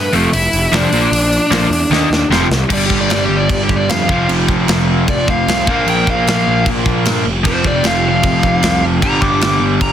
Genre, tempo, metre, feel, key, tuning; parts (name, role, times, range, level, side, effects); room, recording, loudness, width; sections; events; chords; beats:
punk rock; 152 BPM; 4/4; straight; A4 = 438 Hz
smooth overdriven lead guitar; melody; 0.0-9.9 s; A3 to D6; -18 LUFS; equal; tape echo
fuzz picked electric bass; bass; 0.0-9.9 s; F1 to G2; -19 LUFS; equal; overdrive
overdriven electric guitar; riff; 0.1-9.9 s; F2 to Eb4; -16 LUFS; equal
tight metal drum kit; drums; 0.1-9.9 s; crash cymbal, hi-hat, kick drum, snare drum; -18 LUFS; equal; soft clipping on kick
light reverb; dense, heavily limited modern master; -11 LUFS; side -9 dB against mid
0.0-2.7 A section; 2.7-9.9 B section
drum fill 1.9-2.7; lead electric guitar solo 2.7-9.9
0.1 F; 0.9 Bb; 1.9 Eb5; 2.3 F5; 2.7 G5; 4.1 F5; 5.7 Bb5; 7.5 F5; 9.0 G5
0.33 0.72 | 1.12 1.52 1.91 2.31 | 2.70 3.10 3.50 3.89 | 4.29 4.68 5.08 5.47 | 5.87 6.26 6.66 7.05 | 7.45 7.84 8.24 8.63 | 9.03 9.43 9.82